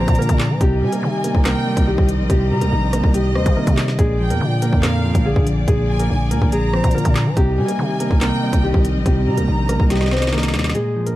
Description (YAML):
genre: hip hop, drill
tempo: 142 BPM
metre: 4/4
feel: half-time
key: C minor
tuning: A4 = 437 Hz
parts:
  - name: dark concert grand piano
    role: melody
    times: 0.0-11.2 s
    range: G3 to C5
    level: -23 LUFS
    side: right 1 dB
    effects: low-pass filter, tape echo
  - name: warm studio violin section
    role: second line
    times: 0.0-10.7 s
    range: Eb5 to Bb5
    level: -28 LUFS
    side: equal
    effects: tape echo
  - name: mellow electric guitar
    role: accompaniment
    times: 0.0-11.2 s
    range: Bb2 to G3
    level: -21 LUFS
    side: left 1 dB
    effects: low-pass filter
  - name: dark symphonic string section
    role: sustained chords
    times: 0.0-10.7 s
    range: Bb3 to Eb5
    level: -31 LUFS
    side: left 1 dB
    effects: none
  - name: growling 808-style bass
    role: bass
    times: 0.0-10.7 s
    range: Bb1 to F3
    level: -21 LUFS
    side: equal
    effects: none
  - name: drill drum kit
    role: drums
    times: 0.1-11.2 s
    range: handclaps, hi-hat, kick drum, rim click, snare drum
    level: -18 LUFS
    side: equal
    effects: none
room: light reverb, small room ambience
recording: dark, warm production, lossy compression artefacts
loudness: -15 LUFS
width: side -15 dB against mid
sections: 0.0-10.7 A section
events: drum fill 9.9-10.7; break 10.7-11.2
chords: 0.0 Bb7; 0.6 Cm7; 4.0 Bb7; 7.4 Cm7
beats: 0.18 | 0.61 1.03 1.45 1.88 | 2.30 2.72 3.14 3.56 | 3.99 4.41 4.83 5.25 | 5.68 6.10 6.52 6.95 | 7.37 7.79 8.21 8.63 | 9.06 9.48 9.90 10.32 | 10.75